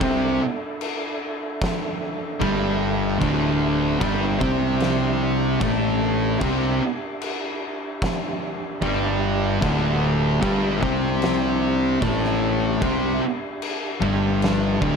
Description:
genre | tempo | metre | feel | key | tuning
stoner and doom metal | 75 BPM | 4/4 | straight | unclear | A4 = 440 Hz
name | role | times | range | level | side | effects
mellow tonewheel organ | sustained chords | 0.0-15.0 s | D4 to E5 | -33 LUFS | right 2 dB | slow rotary speaker, chorus vibrato
fuzz guitar | riff | 0.0-15.0 s | D2 to C4 | -25 LUFS | left 10 dB | distortion
thick fuzz guitar | riff | 0.0-15.0 s | D2 to C4 | -25 LUFS | right 9 dB | distortion
thick fuzz guitar | riff | 0.0-15.0 s | D2 to C4 | -27 LUFS | equal | distortion
fuzz fingered electric bass | bass | 0.0-15.0 s | D1 to C2 | -27 LUFS | equal | overdrive
oversized low-tuned drum kit | drums | 0.0-15.0 s | crash cymbal, kick drum, snare drum | -28 LUFS | equal | none
room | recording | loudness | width
light reverb | none | -20 LUFS | side -5 dB against mid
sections
0.0-15.0 A section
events
none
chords
0.0 D5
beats
| 0.01 0.81 1.62 2.42 | 3.22 4.02 4.82 5.62 | 6.42 7.22 8.02 8.82 | 9.62 10.42 11.22 12.02 | 12.82 13.62 14.42

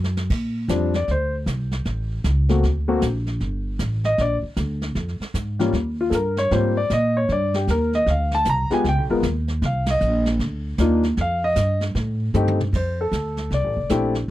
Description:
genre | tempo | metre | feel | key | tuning
jazz piano trio | 154 BPM | 4/4 | swing 64% on 8ths | Bb major | A4 = 438 Hz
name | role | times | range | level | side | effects
upright bass | bass | 0.0-14.3 s | F1 to Bb2 | -22 LUFS | right 1 dB | none
vintage brush drum kit | drums | 0.0-14.3 s | brushed snare drum, crash cymbal, hi-hat, kick drum, ride cymbal, snare drum, toms | -30 LUFS | right 1 dB | none
warm grand piano | melody | 0.7-14.1 s | F3 to Bb5 | -21 LUFS | left 2 dB | none
room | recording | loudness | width
little or no reverb | dry, close 1970s-style studio recording | -19 LUFS | side -15 dB against mid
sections
0.3-12.7 A section; 12.7-14.3 B section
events
drum fill 0.0-0.3, 12.3-12.7; band accent 9.8; grand piano solo 12.7-14.3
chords
0.3 Bbadd9; 1.9 A; 2.6 D(#5, no3); 3.4 Gmadd9; 5.0 Bb7(no3) (rootless); 5.7 Eb; 6.5 Abmaj9; 8.1 Dm7b5; 8.8 Db7(no3); 9.6 Cm11; 11.2 F9; 12.7 F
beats
| 0.30 0.69 1.08 1.47 | 1.86 2.25 2.64 3.02 | 3.41 3.80 4.19 4.58 | 4.96 5.35 5.74 6.13 | 6.52 6.91 7.29 7.68 | 8.07 8.46 8.85 9.24 | 9.62 10.01 10.40 10.79 | 11.18 11.57 11.96 12.35 | 12.73 13.12 13.51 13.90 | 14.29

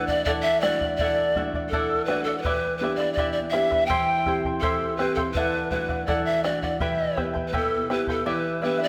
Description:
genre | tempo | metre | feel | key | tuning
andean folk, Andean ensemble | 82 BPM | 2/4 | straight | unclear | A4 = 441 Hz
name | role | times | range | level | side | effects
breathy bright pan flute | melody | 0.0-8.9 s | A4 to G5 | -27 LUFS | equal | none
charango | accompaniment | 0.0-8.9 s | E4 to G5 | -31 LUFS | equal | none
nylon-string guitar | accompaniment | 0.0-8.9 s | B2 to G4 | -32 LUFS | equal | none
bombo | percussion | 0.1-8.2 s | none | -35 LUFS | equal | none
room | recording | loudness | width
wet recital hall reverb, RT60 1.6 s | none | -25 LUFS | mono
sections
0.0-8.3 A section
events
none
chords
0.0 D/E; 2.4 G/E; 3.9 C/E; 5.4 D/E; 6.8 Em; 8.3 G/E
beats
0.26 | 0.99 1.71 | 2.44 3.17 | 3.90 4.62 | 5.35 6.08 | 6.81 7.53 | 8.26

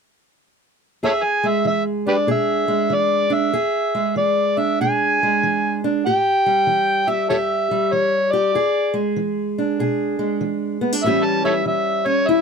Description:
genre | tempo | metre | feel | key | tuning
acoustic country blues, solo or duo | 96 BPM | 4/4 | swing 64% on 8ths | E mixolydian | A4 = 440 Hz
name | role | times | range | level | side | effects
overdriven harmonica | melody | 1.0-12.4 s | G4 to A5 | -18 LUFS | equal | none
fingerpicked steel-string acoustic guitar | accompaniment | 1.0-12.4 s | E2 to G#4 | -21 LUFS | equal | none
room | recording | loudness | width
light reverb | close, detailed microphones | -17 LUFS | side -5 dB against mid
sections
1.0-12.4 A section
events
none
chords
1.0 E7; 6.0 A5; 8.6 E7; 11.1 A7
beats
| 1.03 1.66 2.28 2.91 | 3.54 4.16 4.79 5.42 | 6.04 6.67 7.30 7.93 | 8.55 9.18 9.81 10.43 | 11.06 11.69 12.31

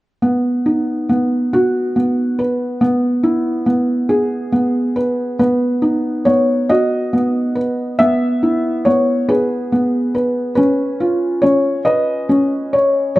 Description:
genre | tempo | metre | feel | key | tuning
children's music | 46 BPM (dotted quarters) | 6/8 | straight | B major | A4 = 439 Hz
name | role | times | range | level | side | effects
felt-muted upright piano | solo | 0.2-13.2 s | B3 to E5 | -14 LUFS | equal | none
room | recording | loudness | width
moderate recital hall reverb, RT60 1.8 s | close, detailed microphones | -14 LUFS | side -17 dB against mid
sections
0.2-5.4 A section; 5.4-13.2 B section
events
none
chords
0.2 B; 2.8 E/B; 5.4 B; 8.0 E/B; 10.6 C#7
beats
| 0.22 1.52 | 2.82 4.10 | 5.40 6.70 | 7.99 9.28 | 10.57 11.86 | 13.15

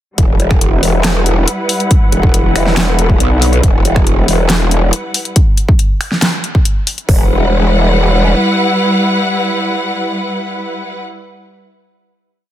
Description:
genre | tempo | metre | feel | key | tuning
heavy wobble dubstep | 139 BPM | 4/4 | half-time | E minor | A4 = 440 Hz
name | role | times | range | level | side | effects
rich studio string section | sustained chords | 0.2-11.0 s | G3 to F#5 | -16 LUFS | equal | sidechain pumping, low-pass filter
growl bass | bass | 0.2-8.3 s | E1 to B1 | -12 LUFS | equal | chorus, overdrive
dubstep drum kit | drums | 0.2-7.2 s | hi-hat, kick drum | -11 LUFS | equal | none
dubstep drum kit | drums | 0.2-7.1 s | finger snaps, handclaps, hi-hat, snare drum | -16 LUFS | equal | overdrive
room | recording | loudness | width
little or no reverb | dense, heavily limited modern master | -10 LUFS | side -12 dB against mid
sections
0.2-7.1 drop; 7.1-10.5 final chord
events
drop 0.2-7.1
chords
0.2 Emadd9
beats
| 0.18 0.61 1.04 1.48 | 1.91 2.34 2.77 3.20 | 3.63 4.07 4.50 4.93 | 5.36 5.79 6.22 6.66 | 7.09 7.52 7.95 8.38 | 8.81 9.24 9.68 10.11

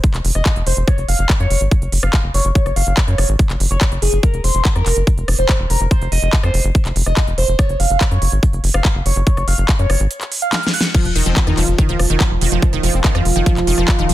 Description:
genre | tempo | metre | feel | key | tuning
psychedelic trance | 143 BPM | 4/4 | straight | unclear | A4 = 440 Hz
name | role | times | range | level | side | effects
big-room dance drum kit | drums | 0.0-14.1 s | crash cymbal, handclaps, hi-hat, rim click, snare drum | -21 LUFS | equal | none
electronic kick drum | drums | 0.0-14.0 s | none | -16 LUFS | equal | none
tight sequencer bass | bass | 0.1-14.1 s | F1 to Gb2 | -17 LUFS | equal | tube saturation
overdriven synth lead | melody | 0.4-10.9 s | Ab4 to Gb5 | -22 LUFS | equal | distortion, phaser, cassette tape, sidechain pumping, digital delay
overtone-sweeping drone | sustained chords | 11.6-14.1 s | F3 to F4 | -23 LUFS | right 4 dB | chorus, built-in reverb, sidechain pumping
wide unison pluck | riff | 10.9-14.1 s | Eb3 to F3 | -20 LUFS | moving between left 5 dB and right 5 dB | auto-pan, vintage 12-bit sampler grit, sidechain pumping, digital delay
metallic wobble bass | second line | 11.3-13.1 s | C4 to Eb4 | -30 LUFS | right 4 dB | wide subtle chorus, sidechain pumping, high-pass filter, digital delay
room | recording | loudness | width
digital ambience | dense, heavily limited modern master | -13 LUFS | side -14 dB against mid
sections
0.0-14.1 A section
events
break 10.1-10.9; drum fill 10.5-10.9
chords
0.0 F7(no3); 0.9 Gb5; 4.2 F5; 7.6 Dbadd11/Gb; 10.9 F5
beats
0.04 0.46 | 0.88 1.29 1.72 2.13 | 2.55 2.97 3.39 3.81 | 4.23 4.65 5.07 5.49 | 5.91 6.33 6.75 7.17 | 7.59 8.01 8.43 8.85 | 9.27 9.69 10.11 10.53 | 10.95 11.37 11.78 12.20 | 12.62 13.04 13.46 13.88

